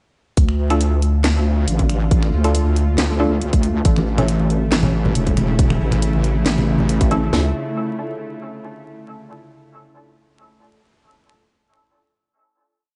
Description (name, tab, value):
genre	deep dubstep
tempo	138 BPM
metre	4/4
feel	half-time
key	D harmonic minor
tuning	A4 = 437 Hz
part	bowed-like drone	sustained chords	1.0-7.5 s	C#3 to F4	-27 LUFS	equal	built-in reverb
part	wobble bass	bass	0.4-7.5 s	E1 to D2	-20 LUFS	equal	chorus
part	garage drum kit	drums	0.4-7.4 s	kick drum, snare drum	-19 LUFS	equal	studio reverb
part	garage drum kit	drums	0.4-7.2 s	finger snaps, handclaps, hi-hat, snare drum	-27 LUFS	equal	studio reverb
part	filtered dub chord stab	stabs	0.7-4.3, 7.1-7.5 s	C#4 to A4	-28 LUFS	equal	subtle chorus, dub echo
part	congas	percussion	4.0-7.2 s	none	-26 LUFS	equal	none
room	light reverb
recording	vinyl crackle, nothing above 10.6 kHz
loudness	-18 LUFS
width	mono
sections	0.4-7.3 drop; 7.3-9.1 final chord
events	drop 0.4-7.3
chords	0.4 Dm; 3.9 A; 7.3 Dm